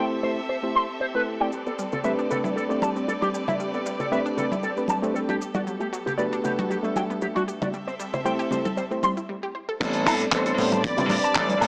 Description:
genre	nu-disco, nu disco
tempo	116 BPM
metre	4/4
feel	swing 54% on 16ths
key	A minor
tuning	A4 = 440 Hz
part	reed electric piano	accompaniment	0.0-11.7 s	G3 to F#5	-31 LUFS	equal	none
part	rich studio string section	sustained chords	0.0-11.7 s	B3 to B5	-36 LUFS	equal	sidechain pumping
part	electric guitar with an envelope filter	riff	0.0-11.7 s	E4 to C6	-29 LUFS	equal	analog chorus, low-pass filter
part	analog pluck	arpeggios	1.5-9.8 s	F#3 to C5	-36 LUFS	equal	chorus, sidechain pumping, analog delay
part	cabasa and congas	percussion	1.5-11.7 s	none	-35 LUFS	equal	none
part	warm chamber violin section	melody	9.8-11.7 s	A4 to D5	-29 LUFS	equal	none
part	glassy slap bass	bass	9.8-11.7 s	A1 to A2	-29 LUFS	equal	tube saturation
part	damped 70s drum kit	drums	9.8-11.7 s	crash cymbal, handclaps, hi-hat, woodblock	-29 LUFS	equal	none
part	kick drum	drums	9.8-11.5 s	none	-30 LUFS	equal	none
room	light reverb, studio reverb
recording	dry, gritty hardware recording, transformer saturation, small speaker sound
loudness	-26 LUFS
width	mono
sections	0.0-9.8 A section; 9.8-11.7 B section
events	break 9.3-9.8; drop 9.8-11.7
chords	0.0 C6; 1.5 Am11; 5.4 Gmaj9; 7.7 C6; 9.8 Am11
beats	0.49 1.01 | 1.53 2.05 2.56 3.08 | 3.60 4.12 4.63 5.15 | 5.67 6.18 6.70 7.22 | 7.74 8.25 8.77 9.29 | 9.80 10.32 10.84 11.36

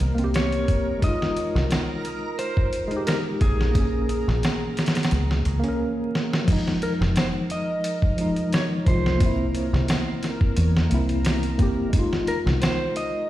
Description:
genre	trip hop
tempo	88 BPM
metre	4/4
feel	swing 54% on 16ths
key	F minor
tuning	A4 = 440 Hz
part	clean lap steel guitar	melody	0.0-13.3 s	Ab4 to Eb5	-30 LUFS	equal	dub echo
part	tine electric piano	accompaniment	0.0-13.3 s	F3 to Bb4	-26 LUFS	equal	medium stereo tremolo, tape echo
part	deep dub fingered electric bass	bass	0.0-12.6 s	F1 to E2	-23 LUFS	equal	none
part	dusty soul sampler-style drum kit	drums	0.0-13.1 s	crash cymbal, hi-hat, kick drum, snare drum	-24 LUFS	equal	none
part	backwards swelling texture	texture	0.0-13.3 s	Bb4	-38 LUFS	right 2 dB	built-in reverb
room	digital ambience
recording	played on a big sound system in a bare room, stone room reverb, vinyl crackle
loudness	-20 LUFS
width	side -14 dB against mid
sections	0.0-6.5 A section; 6.5-13.3 B section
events	drum fill 6.1-6.5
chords	0.0 C7; 1.0 Fm7/C; 3.8 Bbm7; 6.5 Fm7; 9.2 C7; 11.9 Fm7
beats	0.34 | 1.02 1.71 2.39 3.07 | 3.75 4.43 5.12 5.80 | 6.48 7.16 7.84 8.53 | 9.21 9.89 10.57 11.25 | 11.93 12.62

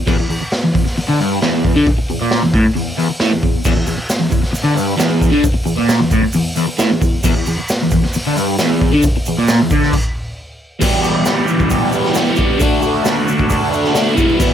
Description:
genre	garage rock duo or trio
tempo	134 BPM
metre	4/4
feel	straight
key	E minor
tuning	A4 = 440 Hz
part	crunchy overdriven guitar	riff	0.0-14.5 s	E2 to G4	-14 LUFS	equal	phaser
part	raw garage drum kit	drums	0.1-14.5 s	crash cymbal, hi-hat, kick drum, snare drum	-18 LUFS	equal	none
part	egg shaker	percussion	3.6-14.5 s	none	-29 LUFS	right 6 dB	none
room	light reverb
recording	none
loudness	-13 LUFS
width	side -9 dB against mid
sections	0.0-10.8 A section; 10.8-14.5 B section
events	stop 9.9-10.8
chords	0.0 N.C.; 10.8 Em; 12.6 D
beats	| 0.07 0.52 0.97 1.41 | 1.86 2.31 2.76 3.21 | 3.65 4.10 4.55 5.00 | 5.45 5.89 6.34 6.79 | 7.24 7.68 8.13 8.58 | 9.03 9.47 9.92 10.37 | 10.82 11.27 11.71 12.16 | 12.61 13.06 13.51 13.96 | 14.40

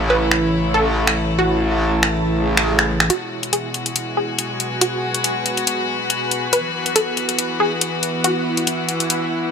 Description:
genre	heavy wobble dubstep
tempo	140 BPM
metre	4/4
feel	swing 54% on 16ths, half-time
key	G# phrygian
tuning	A4 = 441 Hz
part	bright chamber string section	sustained chords	0.0-9.5 s	B2 to F#4	-24 LUFS	left 2 dB	none
part	metallic wobble bass	bass	0.0-3.1 s	A1	-19 LUFS	equal	chorus, overdrive
part	granular cloud pad	texture	0.0-9.5 s	E4 to A5	-25 LUFS	right 1 dB	built-in reverb
part	wide unison pluck	melody	0.1-9.5 s	F#4 to B4	-22 LUFS	equal	cassette tape, ping-pong delay
part	dubstep drum kit	drums	0.3-9.2 s	finger snaps, hi-hat	-18 LUFS	left 1 dB	overdrive, high-pass filter on snare, small room ambience, high-pass filter on hats
part	swell	sound effects	2.4-3.1 s	none	-27 LUFS	right 5 dB	none
room	moderate lush hall reverb, RT60 2.0 s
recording	none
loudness	-17 LUFS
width	side -6 dB against mid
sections	0.0-3.1 A section; 3.1-9.5 B section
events	swell 2.4-3.1; build-up 3.1-9.5; filter sweep on synth pluck 3.1-9.5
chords	0.0 A; 3.1 G#m7; 6.5 Esus2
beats	0.10 0.53 0.96 | 1.39 1.81 2.24 2.67 | 3.10 3.53 3.96 4.39 | 4.81 5.24 5.67 6.10 | 6.53 6.96 7.39 7.81 | 8.24 8.67 9.10

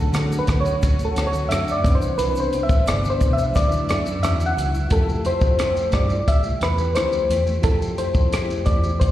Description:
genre	indie pop, bedroom pop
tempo	88 BPM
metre	4/4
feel	straight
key	unclear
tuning	A4 = 443 Hz
part	soft electric-piano-like synth keys	melody	0.0-9.1 s	A4 to F#5	-23 LUFS	left 1 dB	wide subtle chorus, slapback echo
part	mellow electric guitar	accompaniment	0.0-9.1 s	C3 to G4	-30 LUFS	left 3 dB	analog chorus, warbly pitch drift, slapback echo
part	reed electric piano	accompaniment	0.0-9.1 s	E3 to E5	-34 LUFS	right 4 dB	cassette tape
part	ethereal airy pad	sustained chords	0.0-4.9 s	B4 to E6	-35 LUFS	left 1 dB	ensemble chorus, built-in reverb, tremolo
part	vintage muted fingered electric bass	bass	0.0-9.1 s	G1 to D3	-23 LUFS	equal	none
part	compact cocktail drum kit	drums	0.1-9.1 s	hi-hat, kick drum, rim click, shaker	-22 LUFS	equal	none
part	egg shaker	percussion	0.1-4.9 s	none	-49 LUFS	right 2 dB	none
room	light reverb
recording	live gig heard through the venue's PA, recital hall reverb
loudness	-18 LUFS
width	side -13 dB against mid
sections	0.0-4.9 A section; 4.9-9.1 B section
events	synth keys solo 0.0-4.9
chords	0.0 Dmaj7; 1.8 Cmaj9; 3.5 Dmaj9; 4.9 Fmaj9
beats	0.14 0.82 1.50 | 2.19 2.87 3.55 4.23 | 4.91 5.59 6.28 6.96 | 7.64 8.32 9.00

